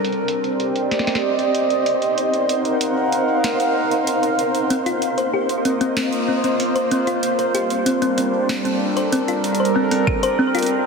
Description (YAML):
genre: IDM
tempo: 95 BPM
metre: 4/4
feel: straight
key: C minor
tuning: A4 = 441 Hz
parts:
  - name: warbly tape-like pad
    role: sustained chords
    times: 0.0-10.9 s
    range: G3 to Gb5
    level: -19 LUFS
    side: right 1 dB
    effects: chorus, built-in reverb
  - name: electro analog drum machine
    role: drums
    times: 0.0-10.7 s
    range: claves, hi-hat, snare drum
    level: -28 LUFS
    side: right 1 dB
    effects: low-pass filter on hats, low-pass filter on perc, low-pass filter on snare, tape echo
  - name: flickering grainy texture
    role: texture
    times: 0.3-9.8 s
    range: C4 to C5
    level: -27 LUFS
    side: equal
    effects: built-in reverb
  - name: thumb-piano-like synth pluck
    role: arpeggios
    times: 4.7-10.6 s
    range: C4 to C5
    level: -22 LUFS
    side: left 2 dB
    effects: chorus, ping-pong delay
  - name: electronic kick drum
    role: drums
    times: 10.1-10.2 s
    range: none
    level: -22 LUFS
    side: equal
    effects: none
room: wet huge ambient reverb, RT60 4.9 s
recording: heavily compressed radio sound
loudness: -17 LUFS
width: side -4 dB against mid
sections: 0.0-9.8 A section; 9.8-10.9 B section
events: none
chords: 0.0 Cm9; 1.9 Ebmadd9; 4.7 Bbsus24; 7.2 Gm11; 9.8 Cm7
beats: 0.28 0.91 1.55 | 2.18 2.81 3.44 4.07 | 4.70 5.33 5.97 6.60 | 7.23 7.86 8.49 9.12 | 9.76 10.39